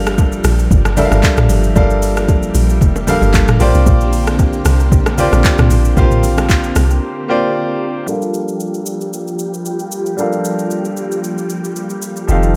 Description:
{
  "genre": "amapiano",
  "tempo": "114 BPM",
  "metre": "4/4",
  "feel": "swing 55% on 16ths",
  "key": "G minor",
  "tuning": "A4 = 439 Hz",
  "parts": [
    { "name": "clear grand piano", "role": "accompaniment", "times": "0.0-12.6 s", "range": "F3 to F5", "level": "-21 LUFS", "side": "equal", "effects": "low-pass filter" },
    { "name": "ensemble organ-string", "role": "sustained chords", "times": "0.0-12.6 s", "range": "D3 to G4", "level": "-24 LUFS", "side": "equal", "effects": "ensemble chorus, sidechain pumping, low-pass filter" },
    { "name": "deep log drum bass", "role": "bass", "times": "0.0-7.0 s", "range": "F1 to C2", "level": "-16 LUFS", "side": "equal", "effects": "none" },
    { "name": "smooth R&B drum kit", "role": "drums", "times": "0.1-12.5 s", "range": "handclaps, hi-hat, kick drum, rim click, shaker, toms", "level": "-18 LUFS", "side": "equal", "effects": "none" },
    { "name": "bongos and congas", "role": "percussion", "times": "0.2-6.9 s", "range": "none", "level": "-25 LUFS", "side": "equal", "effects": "none" },
    { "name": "punchy sub bass", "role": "bass", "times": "12.3-12.6 s", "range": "F1", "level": "-15 LUFS", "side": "equal", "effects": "none" }
  ],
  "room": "little or no reverb",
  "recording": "none",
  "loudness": "-14 LUFS",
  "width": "mono",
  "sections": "0.0-8.1 A section; 8.1-12.6 B section",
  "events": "drop 0.0-8.1; break 7.0-8.1; filter sweep 8.1-12.6",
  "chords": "0.0 Gm9; 3.6 Bb69; 8.1 Gm9"
}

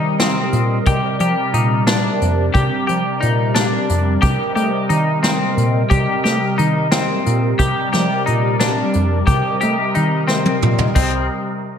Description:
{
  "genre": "progressive instrumental, band music in an uneven meter",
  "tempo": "178 BPM (eighths)",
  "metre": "5/8",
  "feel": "straight",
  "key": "C minor",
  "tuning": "A4 = 440 Hz",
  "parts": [
    { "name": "phased analog pad", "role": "accompaniment", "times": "0.0-11.3 s", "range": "C3 to Eb5", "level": "-21 LUFS", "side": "right 1 dB", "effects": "phaser, chorus, slapback echo" },
    { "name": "semi-hollow electric guitar", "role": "arpeggios", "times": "0.0-11.3 s", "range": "C4 to G4", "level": "-20 LUFS", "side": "left 3 dB", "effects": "analog chorus, slapback echo" },
    { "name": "hollow-body short-scale picked electric bass", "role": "bass", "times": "0.0-11.3 s", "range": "C2 to A3", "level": "-19 LUFS", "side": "equal", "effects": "none" },
    { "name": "vintage brush drum kit", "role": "drums", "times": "0.2-11.1 s", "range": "crash cymbal, hi-hat, kick drum, snare drum, toms", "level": "-20 LUFS", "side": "equal", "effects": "none" }
  ],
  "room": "moderate lush hall reverb, RT60 1.9 s, small room ambience",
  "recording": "big arena sound",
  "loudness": "-15 LUFS",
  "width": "side -8 dB against mid",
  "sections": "0.0-11.0 A section",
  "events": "drum fill 10.3-11.0",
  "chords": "0.0 Cm7; 0.9 Gm; 4.2 Cm7; 7.6 Gm; 9.3 Cm7"
}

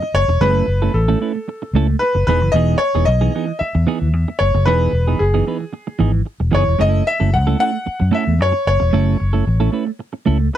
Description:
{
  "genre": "disco",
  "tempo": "112 BPM",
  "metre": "4/4",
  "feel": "straight",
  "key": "F# dorian",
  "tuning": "A4 = 441 Hz",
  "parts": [
    { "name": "bright baby grand piano", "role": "melody", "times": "0.0-10.6 s", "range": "G#4 to F#5", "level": "-19 LUFS", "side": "left 1 dB", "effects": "none" },
    { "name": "clean electric guitar", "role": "accompaniment", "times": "0.0-10.6 s", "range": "E3 to B4", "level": "-20 LUFS", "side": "right 7 dB", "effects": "none" },
    { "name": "fingered electric bass", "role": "bass", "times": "0.1-10.5 s", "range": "E1 to F#2", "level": "-16 LUFS", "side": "left 1 dB", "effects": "none" }
  ],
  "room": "little or no reverb",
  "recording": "dry, close 1970s-style studio recording",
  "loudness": "-15 LUFS",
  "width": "side -11 dB against mid",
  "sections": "0.0-10.6 A section",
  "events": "none",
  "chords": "0.0 F#m7; 2.3 Emaj7; 6.8 F#m7"
}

